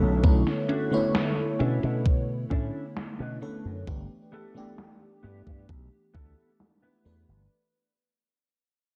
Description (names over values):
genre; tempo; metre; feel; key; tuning
vaporwave; 66 BPM; 4/4; straight; unclear; A4 = 440 Hz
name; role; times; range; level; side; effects
FM electric piano with soft pad layer; accompaniment; 0.0-7.5 s; D3 to C#5; -32 LUFS; equal; phaser, lush chorus, tape echo
mellow electric guitar; riff; 0.0-7.4 s; B3 to B4; -37 LUFS; equal; analog chorus, low-pass filter, tape echo
slap bass with an envelope filter; bass; 0.0-7.5 s; G1 to B2; -30 LUFS; equal; none
electronic kick drum; drums; 0.2-6.3 s; none; -26 LUFS; equal; overdrive
gated 80s digital drum machine; drums; 0.2-7.2 s; hi-hat, snare drum; -34 LUFS; equal; gated reverb, gated reverb snare, overdrive, low-pass filter on hats, low-pass filter on snare, low-pass filter on room
room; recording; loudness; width
light reverb, digital ambience; dark, warm production, cassette tape; -27 LUFS; mono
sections
0.0-7.5 A section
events
fade-out 0.0-7.5; filter sweep on drum 0.0-7.5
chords
0.0 Bm11; 3.9 G69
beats
| 0.24 1.15 2.05 2.96 | 3.87 4.78 5.69 6.60